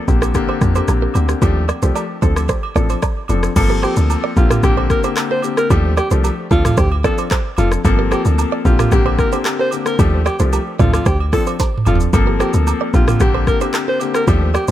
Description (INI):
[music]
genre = afrobeats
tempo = 112 BPM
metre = 4/4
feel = straight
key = Bb major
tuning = A4 = 438 Hz
[part]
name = direct-recorded clean electric guitar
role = riff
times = 0.0-14.7 s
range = F4 to D5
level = -25 LUFS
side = right 8 dB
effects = tape echo
[part]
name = clear grand piano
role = accompaniment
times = 0.1-14.7 s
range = D3 to A4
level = -20 LUFS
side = left 5 dB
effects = tape echo
[part]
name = deep log drum bass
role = bass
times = 0.1-14.7 s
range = F1 to F2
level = -16 LUFS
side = equal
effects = none
[part]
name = afro-pop drum kit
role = drums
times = 0.1-14.7 s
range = crash cymbal, handclaps, hi-hat, kick drum, rim click, shaker, snare drum, toms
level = -18 LUFS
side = equal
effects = none
[part]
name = agogo bells and woodblock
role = percussion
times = 0.2-14.7 s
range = none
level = -28 LUFS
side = right 7 dB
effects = tape echo
[part]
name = breathy alto saxophone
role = melody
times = 3.8-14.7 s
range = F4 to C5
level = -22 LUFS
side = equal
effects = tape echo
[sound]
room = little or no reverb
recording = echo-heavy mix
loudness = -13 LUFS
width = side -12 dB against mid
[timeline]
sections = 0.0-3.6 A section; 3.6-14.7 B section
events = drum fill 11.6-12.1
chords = 0.1 Bb69; 1.4 Ebmaj9#11; 2.2 Dm7; 3.6 Gm11; 4.4 Bb69; 5.7 Ebmaj9#11; 6.5 Dm7; 7.8 Gm11; 8.7 Bb69; 10.0 Ebmaj9#11; 10.8 Dm7; 12.1 Gm11; 12.9 Bb69